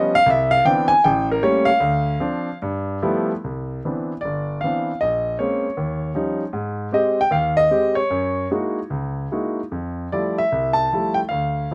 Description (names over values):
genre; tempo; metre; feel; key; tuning
solo jazz; 152 BPM; 4/4; swing 64% on 8ths, rubato; unclear; A4 = 440 Hz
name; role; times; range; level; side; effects
clear grand piano; solo; 0.0-11.7 s; G1 to A5; -21 LUFS; equal; none
room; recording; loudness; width
light reverb; none; -21 LUFS; mono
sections
0.0-3.4 A section; 3.4-11.7 B section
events
grand piano solo 0.0-3.4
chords
0.3 Cmaj9; 1.0 A7b9; 1.8 Dm7; 2.6 G13; 3.4 Cmaj9; 5.0 Bbm9; 5.8 Eb9; 6.5 Abmaj7; 8.1 F#13; 9.7 Fmaj9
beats
| 0.25 0.64 1.03 1.42 | 1.81 2.21 2.61 3.02 | 3.43 3.83 4.23 4.62 | 5.01 5.39 5.77 6.16 | 6.55 6.93 7.32 7.71 | 8.11 8.51 8.90 9.31 | 9.71 10.12 10.52 10.91 | 11.31 11.70